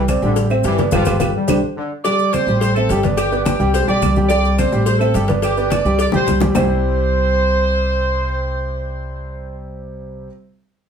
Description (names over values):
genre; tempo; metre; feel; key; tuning
latin, salsa; 213 BPM; 4/4; straight; C major; A4 = 439 Hz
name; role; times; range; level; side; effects
clear grand piano; accompaniment; 0.0-10.3 s; C3 to G5; -20 LUFS; right 1 dB; none
upright bass; bass; 0.0-10.3 s; G1 to C2; -20 LUFS; equal; none
claves; percussion; 0.1-6.6 s; none; -32 LUFS; right 3 dB; none
congas; percussion; 0.1-6.6 s; none; -23 LUFS; left 2 dB; none
cowbell and bongos; percussion; 0.1-6.6 s; none; -25 LUFS; left 6 dB; none
maracas; percussion; 0.1-6.6 s; none; -35 LUFS; left 5 dB; none
brilliant trombone section; second line; 0.2-1.9 s; D3 to G3; -23 LUFS; left 3 dB; none
clear horn section; melody; 2.0-9.6 s; G4 to D5; -20 LUFS; right 2 dB; none
room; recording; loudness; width
wet studio reverb, RT60 0.5 s; heard from further back in the room; -14 LUFS; side -7 dB against mid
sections
0.0-2.0 A section; 2.0-6.6 B section; 6.6-8.8 C section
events
band accent 0.9-2.0; drum fill 1.5-2.0, 6.1-6.6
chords
0.4 Am7; 0.9 G7; 1.5 Csus2; 2.6 Am7; 3.2 G; 3.7 Csus2; 4.9 Am7; 5.4 G; 6.0 C5; 6.6 C